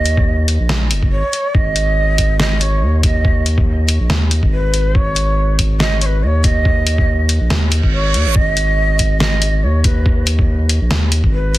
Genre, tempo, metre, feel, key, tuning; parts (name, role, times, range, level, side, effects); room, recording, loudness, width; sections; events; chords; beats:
deep dubstep; 141 BPM; 4/4; swing 55% on 16ths, half-time; G# minor; A4 = 443 Hz
breathy shakuhachi; melody; 0.0-11.6 s; B4 to E5; -21 LUFS; right 2 dB; dub echo
saturated sub bass; bass; 0.0-11.6 s; F#1 to D#2; -15 LUFS; equal
trip hop sampler-style drum kit; drums; 0.1-11.6 s; hi-hat, snare drum; -19 LUFS; equal
electronic kick drum; drums; 0.2-11.3 s; -16 LUFS; equal
reverse cymbal; sound effects; 7.7-8.4 s; -23 LUFS; right 7 dB
digital ambience; dense, heavily limited modern master; -13 LUFS; side -16 dB against mid
0.0-11.6 A section
reverse cymbal 7.7-8.4
0.0 G#5
0.27 0.69 1.12 | 1.54 1.97 2.40 2.82 | 3.25 3.67 4.10 4.52 | 4.95 5.38 5.80 6.23 | 6.65 7.08 7.50 7.93 | 8.35 8.78 9.21 9.63 | 10.06 10.48 10.91 11.33